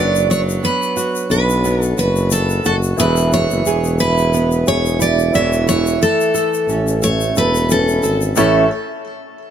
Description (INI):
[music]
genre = acoustic pop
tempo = 89 BPM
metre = 4/4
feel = swing 55% on 16ths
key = A major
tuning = A4 = 439 Hz
[part]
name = picked steel-string acoustic guitar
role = melody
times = 0.0-8.7 s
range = A4 to E5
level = -18 LUFS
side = equal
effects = digital delay
[part]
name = nylon-string guitar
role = accompaniment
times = 0.0-8.7 s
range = A2 to A4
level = -20 LUFS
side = right 5 dB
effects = none
[part]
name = warm grand piano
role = accompaniment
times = 0.0-8.7 s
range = A3 to C#5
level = -26 LUFS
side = left 4 dB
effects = none
[part]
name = warm tuba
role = bass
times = 0.0-8.7 s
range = E1 to B1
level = -18 LUFS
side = left 1 dB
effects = none
[part]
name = egg shaker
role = percussion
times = 0.2-8.7 s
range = none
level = -28 LUFS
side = left 8 dB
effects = none
[sound]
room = light reverb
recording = none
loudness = -14 LUFS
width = side -9 dB against mid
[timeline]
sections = 0.0-8.4 A section; 8.4-9.5 B section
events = none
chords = 0.0 Bm/F#; 3.0 E; 5.3 A/E; 8.4 A